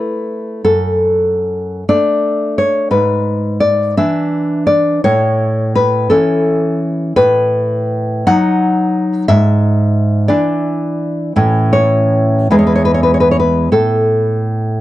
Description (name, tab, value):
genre	romantic piece for solo classical guitar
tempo	48-60 BPM (dotted quarters)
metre	6/8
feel	rubato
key	unclear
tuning	A4 = 440 Hz
part	nylon-string guitar	solo	0.0-14.8 s	E2 to F#5	-12 LUFS	equal	none
room	small room ambience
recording	dry, close 1970s-style studio recording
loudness	-11 LUFS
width	side -15 dB against mid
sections	0.0-14.8 A section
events	none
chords	0.0 A5; 0.6 D/F#; 2.9 E7/G#; 5.0 A; 7.2 B7/A; 9.3 E7/G#; 11.4 A; 12.5 E; 13.7 N.C.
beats	| 0.64 1.86 | 2.93 3.98 | 5.03 6.10 | 7.16 8.27 | 9.29 10.30 | 11.36 12.51 | 13.71